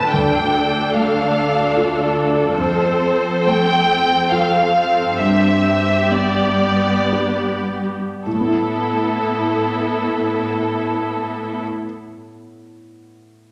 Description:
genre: cinematic.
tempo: 52-75 BPM.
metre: 3/4.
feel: rubato.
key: A minor.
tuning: A4 = 440 Hz.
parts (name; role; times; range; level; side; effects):
clear studio violin section; melody; 0.0-11.6 s; A4 to A5; -22 LUFS; equal; none.
rich studio viola section; accompaniment; 0.0-11.6 s; B3 to A4; -23 LUFS; equal; none.
warm concert grand piano; accompaniment; 0.0-13.5 s; D2 to B4; -26 LUFS; equal; none.
concert harp; arpeggios; 0.0-12.2 s; F2 to A4; -30 LUFS; equal; none.
rich studio cello section; bass; 0.0-11.6 s; D2 to A2; -27 LUFS; equal; none.
room: wet scoring stage reverb, RT60 1.6 s.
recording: none.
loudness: -18 LUFS.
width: mono.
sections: 0.0-8.3 A section; 8.3-11.5 B section.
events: slowing down 1.4-8.3.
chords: 0.1 Dm; 2.6 F; 5.2 G; 8.3 Asus2.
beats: | 0.13 0.95 1.77 | 2.58 3.46 4.30 | 5.18 6.11 7.12 | 8.25 9.36 10.46.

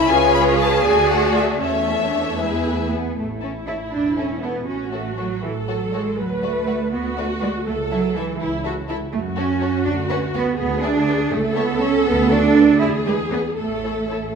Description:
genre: quick classical-period movement for string orchestra.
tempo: 76-84 BPM (dotted quarters).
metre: 6/8.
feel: rubato.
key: A major.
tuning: A4 = 438 Hz.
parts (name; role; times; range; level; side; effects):
warm studio violin section; melody; 0.0-14.2 s; C#5 to B5; -24 LUFS; left 6 dB; none.
rich studio violin section; second line; 0.0-14.2 s; E4 to D5; -27 LUFS; left 3 dB; none.
rich studio viola section; accompaniment; 0.0-14.4 s; A3 to B4; -24 LUFS; equal; none.
dark studio double bass section; bass; 0.0-14.2 s; E1 to F#2; -26 LUFS; right 3 dB; none.
rich studio cello section; bass; 0.0-14.3 s; E3 to G#4; -21 LUFS; right 4 dB; none.
room: wet scoring stage reverb, RT60 1.6 s.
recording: minimal, uncompressed stereo recording.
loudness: -18 LUFS.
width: side -6 dB against mid.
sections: 0.0-3.2 A section; 3.2-14.4 B section.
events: none.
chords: 0.1 C#7; 0.8 D; 1.6 A/E; 2.4 E; 3.2 A; 4.7 F#m/A; 6.2 Bm/D; 7.7 A/C#; 9.1 F#m; 9.8 Bm/D; 10.6 E7/D; 11.3 A/C#; 12.1 Bm/D; 12.8 E7; 13.6 A.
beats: | 0.09 0.85 | 1.61 2.39 | 3.17 3.93 | 4.68 5.43 | 6.19 6.93 | 7.67 8.40 | 9.12 9.85 | 10.58 11.31 | 12.05 12.80 | 13.58.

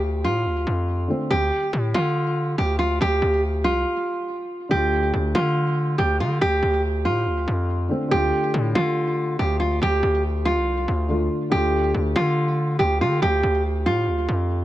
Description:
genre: hip hop, drill.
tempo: 141 BPM.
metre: 4/4.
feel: half-time.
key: D minor.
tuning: A4 = 442 Hz.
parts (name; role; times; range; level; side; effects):
dark concert grand piano; accompaniment; 0.0-1.3, 4.7-14.6 s; D3 to F4; -30 LUFS; left 1 dB; low-pass filter.
distorted 808-style bass; bass; 0.0-14.6 s; C2 to D3; -23 LUFS; equal; distortion.
nylon-string guitar; melody; 0.2-14.6 s; F4 to G4; -22 LUFS; equal; low-pass filter, tape echo.
room: light reverb, studio ambience.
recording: none.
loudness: -20 LUFS.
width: side -14 dB against mid.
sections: 0.0-4.7 A section; 4.7-14.6 B section.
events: break 3.9-4.7.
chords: 0.0 Dm.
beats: 0.03 0.46 0.88 | 1.31 1.73 2.16 2.58 | 3.01 3.43 3.86 4.29 | 4.71 5.14 5.56 5.99 | 6.41 6.84 7.26 7.69 | 8.11 8.54 8.96 9.39 | 9.82 10.24 10.67 11.09 | 11.52 11.94 12.37 12.79 | 13.22 13.65 14.07 14.50.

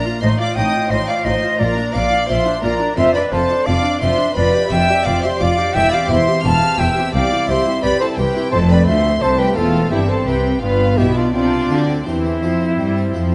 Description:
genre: classical, baroque-style concerto movement with solo episodes.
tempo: 86 BPM.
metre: 4/4.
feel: straight.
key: C major.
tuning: A4 = 439 Hz.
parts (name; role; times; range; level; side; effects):
bright concert flute; melody; 0.0-13.3 s; E4 to A5; -21 LUFS; equal; none.
clear chamber violin section; melody; 0.0-13.3 s; C5 to F6; -29 LUFS; equal; none.
rich chamber violin section; second line; 0.0-13.3 s; C4 to F5; -26 LUFS; equal; none.
harpsichord; accompaniment; 0.0-13.3 s; C2 to D5; -28 LUFS; equal; none.
rich studio viola section; accompaniment; 0.0-13.3 s; A3 to G4; -27 LUFS; equal; none.
clear studio cello section; bass; 0.2-13.3 s; C2 to G3; -24 LUFS; equal; none.
rich symphonic double bass section; bass; 0.2-13.3 s; E1 to G2; -25 LUFS; equal; none.
room: moderate recital hall reverb, RT60 1.5 s.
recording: nothing above 10.8 kHz.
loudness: -16 LUFS.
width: mono.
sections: 0.0-13.3 A section.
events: none.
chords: 0.2 F7/A; 1.6 Bb; 3.0 Dm/F; 4.4 G5/F; 5.7 C/E; 7.1 C; 8.5 F; 9.9 C5/G; 10.6 G7; 11.3 C.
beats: | 0.22 0.91 1.60 2.29 | 2.98 3.67 4.36 5.05 | 5.75 6.44 7.13 7.83 | 8.53 9.22 9.92 10.62 | 11.34 12.06 12.78.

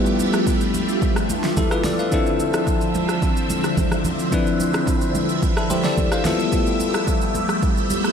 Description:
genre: amapiano.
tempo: 109 BPM.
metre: 4/4.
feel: straight.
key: D dorian.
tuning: A4 = 441 Hz.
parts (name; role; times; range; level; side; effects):
bell-like tine electric piano; accompaniment; 0.0-8.1 s; E3 to F5; -22 LUFS; left 3 dB; phaser.
phased string machine; sustained chords; 0.0-8.1 s; D3 to E5; -23 LUFS; right 1 dB; ensemble chorus, phaser, sidechain pumping.
deep house drum kit; drums; 0.1-8.1 s; kick drum, rim click, shaker, snare drum; -23 LUFS; right 1 dB; overdrive.
congas; percussion; 0.2-8.0 s; none; -30 LUFS; right 3 dB; none.
room: wet lush hall reverb, RT60 1.7 s, digital ambience.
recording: dreamy mix soaked in reverb.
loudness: -18 LUFS.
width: side -7 dB against mid.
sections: 0.0-8.1 A section.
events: none.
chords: 0.0 G13; 2.1 Dm9; 6.2 G13.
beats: 0.47 1.02 1.57 | 2.12 2.67 3.22 3.77 | 4.32 4.87 5.42 5.97 | 6.53 7.08 7.63.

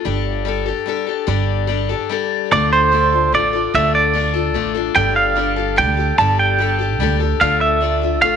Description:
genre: indie folk with a building arrangement.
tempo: 147 BPM.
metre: 3/4.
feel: straight.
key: unclear.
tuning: A4 = 440 Hz.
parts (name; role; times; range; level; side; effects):
picked steel-string acoustic guitar; accompaniment; 0.0-8.4 s; D3 to A4; -20 LUFS; left 12 dB; none.
upright bass; bass; 0.1-8.4 s; G1 to D2; -21 LUFS; right 3 dB; none.
semi-hollow electric guitar; melody; 2.5-8.4 s; C5 to A5; -16 LUFS; right 4 dB; tremolo.
room: light reverb, small room ambience.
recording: 1960s-style stereo.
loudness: -14 LUFS.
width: side -7 dB against mid.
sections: 0.0-2.5 A section; 2.5-8.4 B section.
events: build-up 0.0-2.5.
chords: 0.1 Gsus2; 2.5 Dm; 5.0 Gsus2; 7.4 Dm.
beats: | 0.06 0.47 0.88 | 1.29 1.70 2.10 | 2.51 2.92 3.33 | 3.74 4.15 4.55 | 4.96 5.37 5.78 | 6.18 6.59 7.00 | 7.41 7.81 8.22.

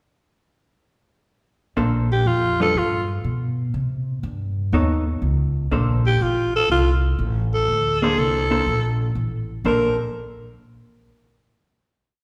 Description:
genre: jazz, small-group swing and bop.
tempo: 122 BPM.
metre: 4/4.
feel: swing 68% on 8ths.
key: Bb major.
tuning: A4 = 440 Hz.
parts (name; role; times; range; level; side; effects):
vintage hollow-body jazz guitar; accompaniment; 1.8-10.0 s; G3 to C#5; -27 LUFS; equal; none.
upright bass; bass; 1.8-10.0 s; A1 to C3; -24 LUFS; equal; none.
growling alto saxophone; melody; 2.1-10.0 s; F4 to Bb4; -23 LUFS; equal; none.
room: wet recital hall reverb, RT60 1.6 s.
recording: recorded in a church or concert hall.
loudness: -21 LUFS.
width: mono.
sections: 1.8-9.7 A section; 9.7-11.6 final chord.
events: none.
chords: 1.8 Bbmaj9; 2.8 G; 3.7 C5; 4.7 B9; 5.7 Bbmaj9.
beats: | 1.77 2.27 2.76 3.25 | 3.75 4.24 4.73 5.22 | 5.72 6.21 6.70 7.19 | 7.68 8.18 8.67 9.16 | 9.65.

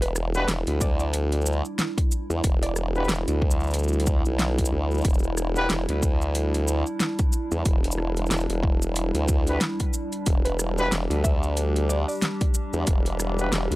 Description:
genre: glitch hop.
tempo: 92 BPM.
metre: 4/4.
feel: swing 58% on 16ths.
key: E minor.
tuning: A4 = 440 Hz.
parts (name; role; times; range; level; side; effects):
woody wave-folded pluck; melody; 0.0-3.3, 10.4-12.2 s; B4 to E5; -34 LUFS; right 1 dB; chorus, vintage 12-bit sampler grit, tape echo.
warbly tape-like pad; sustained chords; 0.2-13.8 s; G3 to G4; -31 LUFS; equal; chorus, built-in reverb, sidechain pumping.
formant-sweep wobble bass; bass; 0.0-13.8 s; E1 to E2; -24 LUFS; equal; chorus, tube saturation.
pop drum kit; drums; 0.0-13.8 s; hi-hat, rim click, shaker, snare drum; -28 LUFS; equal; none.
mellow horn section; stabs; 0.3-13.5 s; D4 to B4; -27 LUFS; left 1 dB; sidechain pumping, tape echo.
electronic kick drum; drums; 0.8-13.0 s; none; -23 LUFS; equal; none.
room: little or no reverb.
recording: dry, gritty hardware recording, transformer saturation.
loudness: -22 LUFS.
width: side -19 dB against mid.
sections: 0.0-13.8 A section.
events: none.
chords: 0.0 Em7.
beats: 0.48 1.13 1.79 | 2.44 3.09 3.74 4.39 | 5.05 5.70 6.35 7.00 | 7.66 8.31 8.96 9.61 | 10.26 10.92 11.57 12.22 | 12.87 13.53.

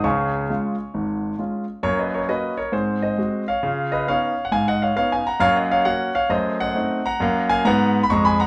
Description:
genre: jazz, stride piano.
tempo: 134 BPM.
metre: 4/4.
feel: swing 65% on 8ths.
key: F# major.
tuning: A4 = 442 Hz.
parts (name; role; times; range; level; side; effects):
clear concert grand piano; solo; 0.0-8.5 s; Ab1 to Db6; -21 LUFS; equal; none.
room: moderate large studio reverb, RT60 0.9 s.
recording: band playing live in one room.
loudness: -22 LUFS.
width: mono.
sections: 0.0-1.8 A section; 1.8-8.5 B section.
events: none.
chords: 0.0 Db; 1.8 F#; 2.7 G#7; 3.6 C#9; 5.4 F#; 6.3 F#dim7; 7.2 F#.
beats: | 0.04 0.49 0.94 1.39 | 1.83 2.28 2.73 3.18 | 3.62 4.07 4.52 4.96 | 5.41 5.86 6.30 6.75 | 7.19 7.64 8.09.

